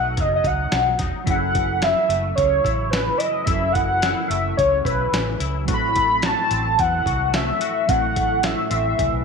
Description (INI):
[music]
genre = indie pop, bedroom pop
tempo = 109 BPM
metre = 4/4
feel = straight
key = unclear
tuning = A4 = 440 Hz
[part]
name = warm velvety synth lead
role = melody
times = 0.0-9.2 s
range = B4 to B5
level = -20 LUFS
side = equal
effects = lush chorus, tape echo
[part]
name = twangy electric guitar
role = accompaniment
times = 0.0-9.2 s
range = F#2 to F#4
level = -29 LUFS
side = left 12 dB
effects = ensemble chorus, warbly pitch drift
[part]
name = warbly lo-fi synth keys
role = accompaniment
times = 0.0-9.2 s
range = F#3 to A4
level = -32 LUFS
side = right 13 dB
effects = chorus, cassette tape
[part]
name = vintage muted fingered electric bass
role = bass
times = 0.0-9.2 s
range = E1 to E2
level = -26 LUFS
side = right 1 dB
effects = none
[part]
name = dusty soul sampler-style drum kit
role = drums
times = 0.2-9.1 s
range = hi-hat, kick drum, snare drum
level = -26 LUFS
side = equal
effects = none
[sound]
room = light reverb, digital ambience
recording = 1960s-style stereo with parts hard left and right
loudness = -18 LUFS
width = side -5 dB against mid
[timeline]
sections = 0.0-9.2 A section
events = none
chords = 0.0 B7; 1.3 F#m7; 5.7 Am6